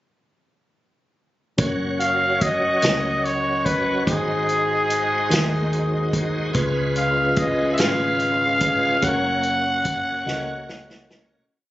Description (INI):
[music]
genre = slow gospel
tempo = 48 BPM (dotted quarters)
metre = 6/8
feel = straight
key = F# major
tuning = A4 = 441 Hz
[part]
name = mellow tine electric piano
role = accompaniment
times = 1.6-11.5 s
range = G#2 to D#5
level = -26 LUFS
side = left 2 dB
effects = medium stereo tremolo
[part]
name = bright tonewheel organ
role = sustained chords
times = 1.6-11.5 s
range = F#3 to C#5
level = -27 LUFS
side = right 2 dB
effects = slow rotary speaker, chorus vibrato
[part]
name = hollow-body short-scale fingered electric bass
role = bass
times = 1.6-11.5 s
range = F#1 to D#2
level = -29 LUFS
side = equal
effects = none
[part]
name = swinging big-band drum kit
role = drums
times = 1.6-11.3 s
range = hi-hat, kick drum, snare drum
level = -24 LUFS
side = equal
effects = none
[part]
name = growling trumpet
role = melody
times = 2.0-11.1 s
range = G#4 to F#5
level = -21 LUFS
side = equal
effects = none
[sound]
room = light reverb, studio ambience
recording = recorded on a phone in the room, club reverb, nothing above 7.7 kHz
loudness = -19 LUFS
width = side -15 dB against mid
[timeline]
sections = 1.6-11.5 A section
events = fade-out 9.0-11.5; drum fill 10.3-11.5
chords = 1.6 F#; 4.1 G#7; 6.5 C#7; 9.0 F#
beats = | 1.59 2.83 | 4.07 5.31 | 6.55 7.79 | 9.02 10.26